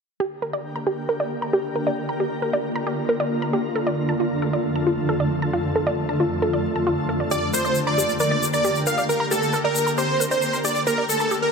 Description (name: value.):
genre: uplifting trance.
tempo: 135 BPM.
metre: 4/4.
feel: straight.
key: G minor.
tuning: A4 = 440 Hz.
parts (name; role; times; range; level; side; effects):
wide unison pluck; arpeggios; 0.2-11.4 s; F4 to Bb5; -25 LUFS; right 1 dB; ping-pong delay.
dense compressed supersaw; melody; 7.3-11.5 s; A4 to F5; -21 LUFS; right 1 dB; none.
egg shaker; percussion; 7.3-11.4 s; none; -29 LUFS; left 4 dB; none.
room: moderate huge ambient reverb, RT60 5.2 s.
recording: dark, warm production.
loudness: -20 LUFS.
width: side -5 dB against mid.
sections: 0.2-11.5 A section.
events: filter sweep on synth arpeggio sound 0.2-11.5.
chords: 0.2 Gm; 3.8 Dm/F; 7.3 Gm.